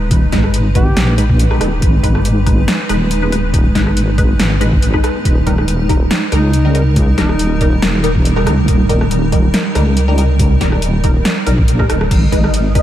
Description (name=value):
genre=deep dubstep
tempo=140 BPM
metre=4/4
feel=swing 53% on 16ths, half-time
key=G# harmonic minor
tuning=A4 = 438 Hz
part: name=granular cloud pad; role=sustained chords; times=0.0-12.8 s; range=G3 to B4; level=-20 LUFS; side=right 2 dB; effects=built-in reverb
part: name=deep soft wobble bass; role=bass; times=0.0-12.8 s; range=D#1 to C#2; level=-14 LUFS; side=equal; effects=chorus
part: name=deep house drum kit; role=drums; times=0.1-12.8 s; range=crash cymbal, hi-hat, ride cymbal, rim click, snare drum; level=-20 LUFS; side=equal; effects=overdrive
part: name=electronic kick drum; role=drums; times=0.1-12.8 s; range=none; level=-14 LUFS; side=equal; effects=none
part: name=filtered dub chord stab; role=stabs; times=0.3-12.8 s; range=G3 to B4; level=-21 LUFS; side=left 1 dB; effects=phaser, ensemble chorus, dub echo
part: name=warm duduk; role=melody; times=0.8-1.2, 6.3-7.8 s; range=D#4 to G4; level=-26 LUFS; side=equal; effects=vintage 12-bit sampler grit, dub echo
part: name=flickering grainy texture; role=texture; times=12.4-12.8 s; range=D#5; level=-22 LUFS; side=left 2 dB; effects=built-in reverb, analog chorus
room=light reverb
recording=vinyl crackle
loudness=-11 LUFS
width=side -12 dB against mid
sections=0.0-12.8 A section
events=none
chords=0.0 G#m; 5.3 D#; 12.1 G#m